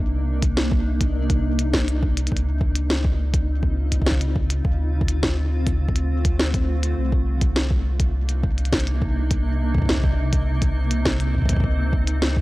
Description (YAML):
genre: IDM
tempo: 103 BPM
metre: 4/4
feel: straight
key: C dorian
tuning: A4 = 440 Hz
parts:
  - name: granular cloud pad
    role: sustained chords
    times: 0.0-12.4 s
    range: C3 to F4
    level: -28 LUFS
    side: equal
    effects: built-in reverb
  - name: warm sub bass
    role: bass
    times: 0.0-12.4 s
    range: C2 to D2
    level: -22 LUFS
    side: equal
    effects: none
  - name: electronic kick drum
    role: drums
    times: 0.4-12.4 s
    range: none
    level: -23 LUFS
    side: equal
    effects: none
  - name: glitchy drum kit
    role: drums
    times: 0.4-12.3 s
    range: hi-hat, snare drum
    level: -25 LUFS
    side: equal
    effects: analog delay
room: little or no reverb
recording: dry, gritty hardware recording, transformer saturation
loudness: -19 LUFS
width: side -19 dB against mid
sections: 0.0-12.4 A section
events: none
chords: 0.0 Cm9; 2.3 Dbmaj9; 4.6 Dm7; 7.0 Cm9; 11.6 Dbmaj9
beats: 0.57 1.15 1.73 | 2.32 2.90 3.48 4.06 | 4.65 5.23 5.81 6.39 | 6.98 7.56 8.14 8.72 | 9.31 9.89 10.47 11.05 | 11.64 12.22